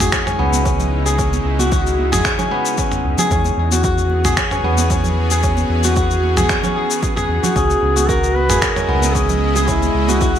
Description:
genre	organic downtempo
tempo	113 BPM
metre	4/4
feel	swing 53% on 16ths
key	C# minor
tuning	A4 = 441 Hz
part	bowed-like drone	sustained chords	0.0-10.4 s	C#3 to D#5	-24 LUFS	right 1 dB	built-in reverb, sidechain pumping
part	kora	arpeggios	0.0-10.4 s	B3 to C#5	-19 LUFS	left 1 dB	ping-pong delay
part	round analog bass	bass	0.0-10.4 s	G#1 to E2	-18 LUFS	equal	none
part	dusty soul sampler-style drum kit	drums	0.0-10.4 s	finger snaps, shaker, toms	-22 LUFS	left 1 dB	small room ambience, gated reverb
part	electronic kick drum	drums	0.1-10.3 s	none	-22 LUFS	equal	small room ambience
part	congas	percussion	0.5-10.2 s	none	-27 LUFS	right 5 dB	none
part	warm duduk	melody	7.6-10.4 s	E4 to B4	-20 LUFS	equal	ping-pong delay
room	moderate plate reverb, RT60 1.1 s, small room ambience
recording	bright 1980s-style digital production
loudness	-14 LUFS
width	side -9 dB against mid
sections	0.0-10.4 A section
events	none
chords	0.0 C#m7; 3.3 E6; 7.6 C#m7

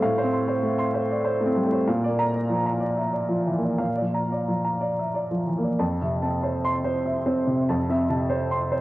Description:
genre	neoclassical minimalist piano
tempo	88-100 BPM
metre	3/4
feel	rubato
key	F major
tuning	A4 = 440 Hz
part	warm baby grand piano	solo	0.0-8.8 s	F2 to C6	-22 LUFS	equal	cassette tape, analog delay
room	moderate spring reverb, RT60 2.5 s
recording	home recording on cassette, vinyl crackle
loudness	-22 LUFS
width	side -17 dB against mid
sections	0.0-5.8 A section; 5.8-8.8 B section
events	none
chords	0.0 F/A; 1.9 Bb; 5.8 Fmaj7

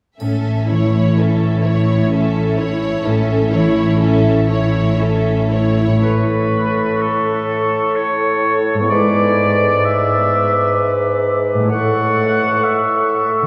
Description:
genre	classical, slow romantic movement for symphony orchestra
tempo	56-66 BPM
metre	3/4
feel	rubato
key	A major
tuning	A4 = 441 Hz
part	warm studio violin section	melody	0.2-6.0 s	C#5 to E5	-30 LUFS	equal	none
part	warm studio violin section	second line	0.2-6.1 s	A4 to C#5	-26 LUFS	equal	none
part	warm studio viola section	accompaniment	0.2-6.0 s	C#4 to E4	-25 LUFS	equal	none
part	concert harp	arpeggios	0.2-13.5 s	G#2 to D5	-22 LUFS	equal	none
part	warm studio cello section	bass	0.2-5.8 s	A2	-26 LUFS	equal	none
part	warm studio double bass section	bass	0.2-5.8 s	A1	-23 LUFS	equal	none
part	triangle	percussion	0.2-2.1 s	none	-52 LUFS	equal	none
part	bright clarinet	second line	6.0-13.3 s	A4 to B4	-24 LUFS	equal	none
part	clear oboe	second line	6.0-13.5 s	A4 to F#5	-22 LUFS	equal	none
part	warm bassoon	accompaniment	6.0-13.3 s	G#2 to A2	-23 LUFS	equal	none
part	concert flute	second line	6.1-13.3 s	C#6 to D6	-24 LUFS	equal	none
room	wet cathedral reverb, RT60 5.7 s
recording	heard from further back in the room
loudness	-16 LUFS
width	mono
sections	0.2-6.0 A section; 6.0-13.5 B section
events	none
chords	0.2 A; 8.9 E7/G#; 11.7 A

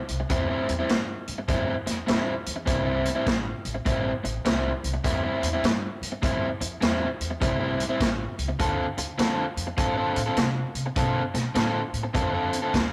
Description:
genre	electric blues shuffle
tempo	101 BPM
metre	4/4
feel	swing 64% on 8ths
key	A minor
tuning	A4 = 440 Hz
part	upright bass	bass	0.1-12.9 s	A1 to C3	-34 LUFS	equal	none
part	vintage drum kit	drums	0.1-12.9 s	hi-hat, kick drum, snare drum	-30 LUFS	equal	none
part	overdriven electric guitar	riff	0.2-12.8 s	A2 to A4	-30 LUFS	equal	spring reverb
room	light reverb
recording	rough rehearsal-room recording, tube saturation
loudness	-26 LUFS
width	mono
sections	0.0-12.9 A section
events	none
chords	0.0 Am7; 8.6 Dm7

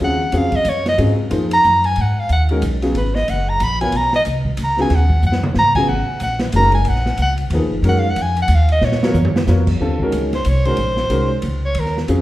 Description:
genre	modal jazz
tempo	184 BPM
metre	3/4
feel	swing 62% on 8ths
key	G# dorian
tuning	A4 = 440 Hz
part	warm soprano saxophone	melody	0.0-12.0 s	Bb4 to B5	-18 LUFS	equal	none
part	warm upright piano	accompaniment	0.0-12.2 s	Db3 to C#5	-21 LUFS	left 1 dB	none
part	upright bass	bass	0.0-12.2 s	F#1 to A#2	-18 LUFS	equal	none
part	open jazz drum kit	drums	0.3-12.2 s	crash cymbal, hi-hat, kick drum, ride cymbal, snare drum, toms	-25 LUFS	right 1 dB	none
room	wet large studio reverb, RT60 1.1 s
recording	heard from further back in the room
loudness	-14 LUFS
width	side -15 dB against mid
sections	0.0-2.0 A section; 2.0-9.8 A section; 9.8-12.2 A section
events	soprano saxophone solo 0.0-9.8, 9.8-12.2; drum fill 5.2-5.6, 8.8-9.5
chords	0.0 Absus4/Eb; 2.0 G#m9; 5.9 D#m; 9.8 Ebm7

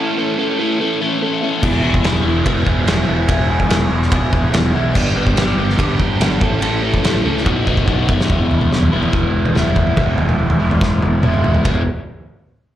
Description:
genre	indie rock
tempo	144 BPM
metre	4/4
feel	straight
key	E major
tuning	A4 = 440 Hz
part	crunchy overdriven guitar	riff	0.0-11.8 s	E2 to A4	-18 LUFS	equal	phaser, slapback echo
part	fuzz fingered electric bass	bass	1.6-11.8 s	E1 to F#2	-20 LUFS	equal	overdrive
part	loose indie drum kit	drums	1.6-11.7 s	crash cymbal, kick drum, ride cymbal, snare drum, toms	-17 LUFS	equal	none
room	small room ambience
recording	live gig heard through the venue's PA, club reverb, lossy compression artefacts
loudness	-14 LUFS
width	side -12 dB against mid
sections	0.0-8.3 A section; 8.3-11.6 B section; 11.6-12.8 C section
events	drum fill 7.4-8.3, 10.8-11.6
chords	0.0 A; 1.6 E; 4.9 G; 6.4 A; 7.4 B5; 8.3 E

